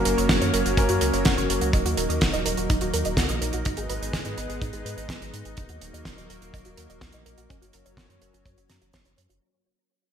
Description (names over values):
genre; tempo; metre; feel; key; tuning
italo disco; 125 BPM; 4/4; straight; unclear; A4 = 441 Hz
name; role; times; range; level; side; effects
lush unison pad; sustained chords; 0.0-9.4 s; Gb3 to Eb4; -30 LUFS; right 1 dB; chorus
dark concert grand piano; stabs; 0.0-1.7 s; Bb3 to Bb4; -28 LUFS; left 2 dB; ping-pong delay
round analog bass; bass; 0.0-9.4 s; Eb1 to Ab2; -30 LUFS; equal; none
analog pluck; arpeggios; 0.1-9.4 s; Db4 to Bb5; -32 LUFS; right 2 dB; chorus, phaser, ping-pong delay
damped 70s drum kit; drums; 0.1-9.4 s; hi-hat, snare drum; -27 LUFS; right 1 dB; studio reverb, gated reverb
kick drum; drums; 0.3-9.0 s; none; -26 LUFS; equal; studio reverb
room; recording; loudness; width
moderate lush hall reverb, RT60 1.6 s, studio reverb; bright 1980s-style digital production; -22 LUFS; side -8 dB against mid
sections
0.0-9.4 A section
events
fade-out 0.0-9.4; filter sweep on synth arpeggio sound 0.0-9.4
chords
0.0 Gb; 1.7 Ebm; 3.7 Abm; 5.6 Ebm; 7.5 Gb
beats
0.29 0.78 1.25 | 1.74 2.21 2.69 3.17 | 3.65 4.13 4.62 5.09 | 5.58 6.05 6.54 7.01 | 7.50 7.97 8.46 8.94